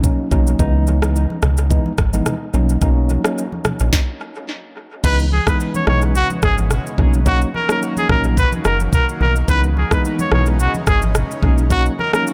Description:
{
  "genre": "afrobeats",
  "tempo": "108 BPM",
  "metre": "4/4",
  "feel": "swing 55% on 16ths",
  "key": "C# dorian",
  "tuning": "A4 = 440 Hz",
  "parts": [
    { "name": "tine electric piano", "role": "accompaniment", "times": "0.0-12.3 s", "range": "E3 to D#4", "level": "-26 LUFS", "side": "equal", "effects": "dub echo" },
    { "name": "afro-pop drum kit", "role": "drums", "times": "0.0-12.3 s", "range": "crash cymbal, kick drum, rim click, shaker, snare drum", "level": "-22 LUFS", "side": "equal", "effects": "dub echo" },
    { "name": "congas", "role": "percussion", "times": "0.0-12.1 s", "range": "none", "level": "-29 LUFS", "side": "equal", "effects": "none" },
    { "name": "round analog bass", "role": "bass", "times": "0.3-11.9 s", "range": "F#1 to C#2", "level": "-19 LUFS", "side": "equal", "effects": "none" },
    { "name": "bright trumpet", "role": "melody", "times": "5.0-12.2 s", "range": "F#4 to C#5", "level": "-23 LUFS", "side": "equal", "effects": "dub echo" },
    { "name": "granular cloud pad", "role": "sustained chords", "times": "5.7-12.3 s", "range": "C#3 to F#4", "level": "-31 LUFS", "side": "equal", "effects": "built-in reverb, sidechain pumping" }
  ],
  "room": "little or no reverb",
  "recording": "echo-heavy mix",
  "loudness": "-17 LUFS",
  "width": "mono",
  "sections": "0.0-5.0 A section; 5.0-12.3 B section",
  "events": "stop 3.9-5.0",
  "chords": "0.0 Bmaj7; 0.6 C#m7; 2.5 Bmaj7; 5.0 C#m7; 7.0 Bmaj7; 9.5 C#m7; 11.4 Bmaj7",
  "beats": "0.04 | 0.59 1.15 1.71 2.26 | 2.82 3.37 3.93 4.48 | 5.04 5.59 6.15 6.71 | 7.26 7.82 8.37 8.93 | 9.48 10.04 10.59 11.15 | 11.71 12.26"
}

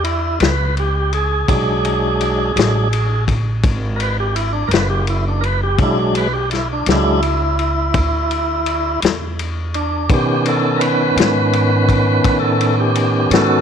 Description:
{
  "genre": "slow blues",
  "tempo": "56 BPM (dotted quarters)",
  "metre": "12/8",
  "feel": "straight",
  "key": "E mixolydian",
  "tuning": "A4 = 444 Hz",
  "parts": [
    { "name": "tonewheel organ", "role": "sustained chords", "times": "0.0-13.6 s", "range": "D#3 to B4", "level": "-17 LUFS", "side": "right 1 dB", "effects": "overdrive, fast rotary speaker" },
    { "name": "upright bass", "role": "bass", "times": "0.0-13.6 s", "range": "F#1 to B2", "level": "-20 LUFS", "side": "right 1 dB", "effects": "none" },
    { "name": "vintage drum kit", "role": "drums", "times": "0.0-13.5 s", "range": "kick drum, ride cymbal, snare drum", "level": "-21 LUFS", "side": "left 4 dB", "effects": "none" }
  ],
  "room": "light reverb, small room ambience",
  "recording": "1960s-style stereo",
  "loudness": "-14 LUFS",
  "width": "side -8 dB against mid",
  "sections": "0.0-13.6 A section",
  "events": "tonewheel organ solo 0.0-13.6",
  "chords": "0.0 A9 (rootless); 1.5 E9; 10.1 B9",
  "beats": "0.40 | 1.48 2.56 3.63 4.71 | 5.79 6.87 7.94 9.02 | 10.10 11.17 12.25 13.32"
}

